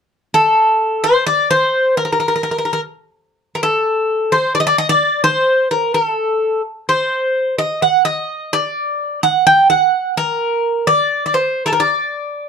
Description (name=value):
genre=greek folk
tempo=257 BPM (eighths)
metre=7/8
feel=straight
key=D phrygian dominant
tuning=A4 = 439 Hz
part: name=Greek bouzouki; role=solo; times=0.3-12.5 s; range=A4 to G5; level=-13 LUFS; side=equal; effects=none
room=moderate small room reverb, RT60 0.5 s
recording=dark, warm production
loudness=-14 LUFS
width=side -6 dB against mid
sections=0.3-12.5 A section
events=none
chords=none